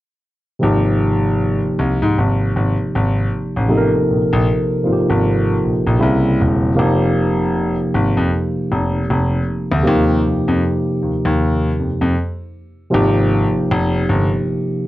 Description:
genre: R&B, neo-soul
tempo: 78 BPM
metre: 4/4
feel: swing 59% on 16ths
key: unclear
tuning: A4 = 440 Hz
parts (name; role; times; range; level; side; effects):
- barky tine electric piano; accompaniment; 0.6-14.9 s; C3 to Bb4; -17 LUFS; equal; none
- clear grand piano; bass; 0.6-14.3 s; E1 to Ab2; -18 LUFS; equal; none
room: light reverb, small room ambience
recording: none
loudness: -14 LUFS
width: side -16 dB against mid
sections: 0.6-12.9 A section; 12.9-14.9 B section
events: stop 12.2-12.9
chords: 0.6 Abmaj7; 6.0 C7b9; 6.8 F7(no3); 9.8 Ebadd9; 12.9 Abmaj7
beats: | 0.61 1.38 2.15 2.92 | 3.69 4.46 5.23 6.00 | 6.77 7.54 8.31 9.07 | 9.85 10.61 11.38 12.15 | 12.92 13.69 14.46

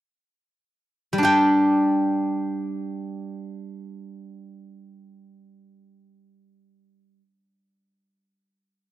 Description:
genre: chinese traditional, Chinese solo plucked strings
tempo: free time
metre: none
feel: none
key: unclear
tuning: A4 = 441 Hz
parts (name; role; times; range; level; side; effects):
- steel-string zither; solo; 1.1-7.2 s; G3 to G5; -21 LUFS; equal; none
room: small room ambience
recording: dry, close 1970s-style studio recording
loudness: -19 LUFS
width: side -15 dB against mid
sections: 0.0-1.2 A section; 1.2-7.6 B section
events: none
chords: none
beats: free time

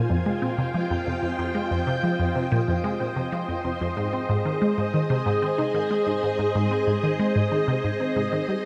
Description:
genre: ambient, sequencer-driven space music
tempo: 93 BPM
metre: 4/4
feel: straight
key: unclear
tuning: A4 = 440 Hz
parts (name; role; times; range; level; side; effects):
- string machine, full ensemble; sustained chords; 0.0-8.7 s; Eb4 to Ab5; -28 LUFS; equal; ensemble chorus, shimmer reverb
- resonant blip pluck; riff; 0.1-8.6 s; F2 to Eb4; -27 LUFS; equal; phaser, cassette tape, analog delay
room: wet spring reverb, RT60 2.7 s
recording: echo-heavy mix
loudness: -25 LUFS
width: mono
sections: 0.0-8.7 A section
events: none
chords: 0.0 Fm7; 4.0 Ab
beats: 0.10 0.74 | 1.39 2.03 2.68 3.32 | 3.97 4.61 5.26 5.90 | 6.55 7.19 7.84 8.48

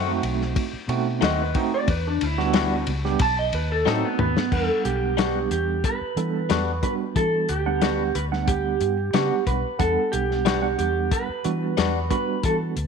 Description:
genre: straight-eighth soul blues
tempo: 91 BPM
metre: 4/4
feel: straight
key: E minor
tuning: A4 = 441 Hz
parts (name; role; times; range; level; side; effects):
- electric guitar through a small old amp; melody; 0.0-12.5 s; B3 to A5; -25 LUFS; right 2 dB; phaser
- direct-recorded clean electric guitar; stabs; 0.0-12.0 s; D#3 to A4; -28 LUFS; left 12 dB; spring reverb
- vintage muted fingered electric bass; bass; 0.0-12.9 s; B1 to E3; -27 LUFS; left 1 dB; none
- mellow tine electric piano; accompaniment; 0.1-12.7 s; G3 to F#5; -28 LUFS; right 12 dB; medium tremolo
- warm soul drum kit; drums; 0.2-12.9 s; crash cymbal, hi-hat, kick drum, ride cymbal, snare drum, toms; -27 LUFS; left 4 dB; none
room: light reverb, small room ambience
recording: 1960s-style stereo with parts hard left and right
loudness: -21 LUFS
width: side -6 dB against mid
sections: 0.0-4.5 A section; 4.5-12.9 B section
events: clean electric guitar solo 0.0-4.5; drum fill 3.9-4.5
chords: 0.0 B7b9; 1.9 Em9; 3.2 B7b9; 4.5 Em9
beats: 0.57 1.22 | 1.88 2.54 3.20 3.86 | 4.52 5.18 5.84 6.50 | 7.16 7.82 8.47 9.13 | 9.79 10.45 11.11 11.77 | 12.43

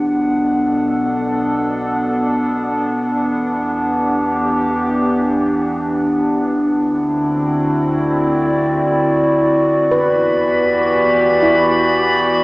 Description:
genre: ambient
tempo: free time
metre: none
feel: none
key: E minor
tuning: A4 = 441 Hz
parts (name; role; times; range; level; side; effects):
- warbly tape-like pad; sustained chords; 0.0-12.4 s; B2 to F#5; -14 LUFS; equal; chorus, built-in reverb
- warm sub bass; bass; 0.0-12.4 s; B1 to E2; -38 LUFS; equal; none
- handpan; arpeggios; 9.9-12.4 s; E4 to B4; -21 LUFS; equal; tape echo
- drifting glass-harmonics texture; texture; 10.2-12.4 s; B5; -19 LUFS; equal; chorus, built-in reverb
room: wet concert hall reverb, RT60 2.2 s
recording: cassette tape, small speaker sound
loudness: -14 LUFS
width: side -23 dB against mid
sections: 0.0-12.4 A section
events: none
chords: 0.0 Bm7; 3.1 Em7; 6.5 D7; 9.9 Em7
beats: free time

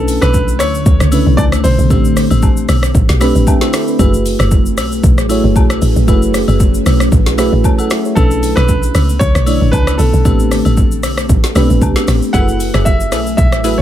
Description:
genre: amapiano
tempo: 115 BPM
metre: 4/4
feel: swing 55% on 16ths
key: F# minor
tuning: A4 = 440 Hz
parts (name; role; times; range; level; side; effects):
- warm grand piano; melody; 0.0-2.6, 8.2-13.8 s; A4 to F#5; -19 LUFS; equal; ping-pong delay
- mellow FM electric piano; accompaniment; 0.0-13.8 s; A3 to B5; -18 LUFS; right 1 dB; chorus
- ethereal airy pad; sustained chords; 0.0-13.8 s; D3 to G#5; -20 LUFS; left 2 dB; ensemble chorus, built-in reverb, sidechain pumping
- woody log drum bass; bass; 0.0-13.8 s; F#1 to D2; -13 LUFS; equal; none
- deep house drum kit; drums; 0.1-13.8 s; hi-hat, kick drum, rim click, shaker, snare drum; -14 LUFS; equal; none
- agogo bells and woodblock; percussion; 0.2-13.8 s; none; -27 LUFS; left 4 dB; none
- analog pluck; stabs; 12.3-13.8 s; E4 to B4; -23 LUFS; left 1 dB; chorus, ping-pong delay
room: little or no reverb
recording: none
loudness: -10 LUFS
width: side -11 dB against mid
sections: 0.0-13.8 A section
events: FM electric piano fill 2.9-4.0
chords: 0.0 Bm11; 1.9 Am11; 4.0 F#m11; 8.2 Bm11; 10.3 Am11; 12.3 F#m11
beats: 0.34 0.86 1.38 | 1.90 2.43 2.95 3.47 | 3.99 4.51 5.04 5.56 | 6.08 6.60 7.12 7.64 | 8.16 8.69 9.21 9.73 | 10.25 10.77 11.30 11.82 | 12.34 12.86 13.38

